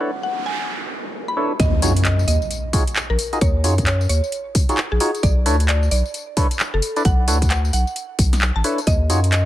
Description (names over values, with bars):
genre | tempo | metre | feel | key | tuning
UK garage, two-step garage | 132 BPM | 4/4 | swing 62% on 16ths | unclear | A4 = 442 Hz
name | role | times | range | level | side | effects
mallet-like synth pluck | melody | 0.0-9.5 s | Ab4 to B5 | -26 LUFS | equal | chorus, dub echo
percussive organ stab | stabs | 0.0-9.2 s | D4 to Eb5 | -25 LUFS | equal | chorus
noise sweep and impact | sound effects | 0.0-3.4 s | none | -27 LUFS | equal | none
saturated sub bass | bass | 1.6-9.5 s | F#1 to Gb2 | -18 LUFS | equal | none
electronic kick drum | drums | 1.6-9.0 s | none | -18 LUFS | equal | none
house drum kit | drums | 1.6-9.4 s | handclaps, hi-hat, snare drum, tambourine | -24 LUFS | equal | none
room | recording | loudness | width
little or no reverb | none | -17 LUFS | side -14 dB against mid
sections
0.0-1.6 A section; 1.6-9.5 B section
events
noise sweep 0.0-1.6; drop 1.6-9.5; impact 1.6-3.4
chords
0.0 Bm11; 1.6 Ebm11; 5.2 Bm11; 8.9 Ebm11